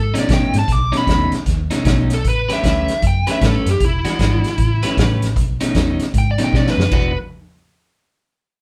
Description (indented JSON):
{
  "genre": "electric blues shuffle",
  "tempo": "154 BPM",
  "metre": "4/4",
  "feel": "swing 63% on 8ths",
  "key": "unclear",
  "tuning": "A4 = 440 Hz",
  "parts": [
    { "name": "smooth overdriven lead guitar", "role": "melody", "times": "0.0-7.2 s", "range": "E4 to D6", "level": "-24 LUFS", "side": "equal", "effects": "none" },
    { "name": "vintage muted fingered electric bass", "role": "bass", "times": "0.0-7.1 s", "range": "E1 to B2", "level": "-22 LUFS", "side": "equal", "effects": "none" },
    { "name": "electric guitar at the edge of break-up", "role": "riff", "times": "0.1-7.1 s", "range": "B2 to B4", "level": "-23 LUFS", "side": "equal", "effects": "vibrato effect" },
    { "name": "vintage drum kit", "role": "drums", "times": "0.1-7.0 s", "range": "crash cymbal, hi-hat, kick drum, snare drum", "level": "-22 LUFS", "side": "equal", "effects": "none" }
  ],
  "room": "moderate studio ambience, RT60 0.5 s",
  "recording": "band playing live in one room",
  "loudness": "-17 LUFS",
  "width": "mono",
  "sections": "0.0-6.9 A section; 6.9-8.5 B section",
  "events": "drum fill 6.5-6.9",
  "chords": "0.0 B9; 2.2 A9; 3.8 E9; 4.6 A9; 5.4 B9; 6.9 E9",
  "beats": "0.29 | 0.68 1.07 1.46 1.85 | 2.24 2.63 3.02 3.41 | 3.80 4.19 4.58 4.97 | 5.36 5.75 6.14 6.53 | 6.92"
}